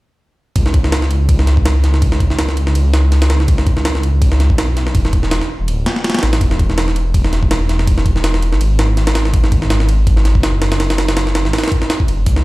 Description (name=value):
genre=drum and bass, jungle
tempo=164 BPM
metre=4/4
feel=swing 55% on 16ths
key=unclear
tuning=A4 = 440 Hz
part: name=dark detuned saw bass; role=bass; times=0.6-12.4 s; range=D1 to C#2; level=-14 LUFS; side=equal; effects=none
part: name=jungle sampler-style drum kit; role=drums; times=0.6-12.4 s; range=kick drum, ride cymbal, snare drum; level=-15 LUFS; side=equal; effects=none
part: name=shaker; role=drums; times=12.3-12.4 s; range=none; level=-38 LUFS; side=left 2 dB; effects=none
room=little or no reverb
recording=played on a big sound system in a bare room, large studio reverb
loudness=-12 LUFS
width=side -20 dB against mid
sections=0.6-12.4 A section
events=none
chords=none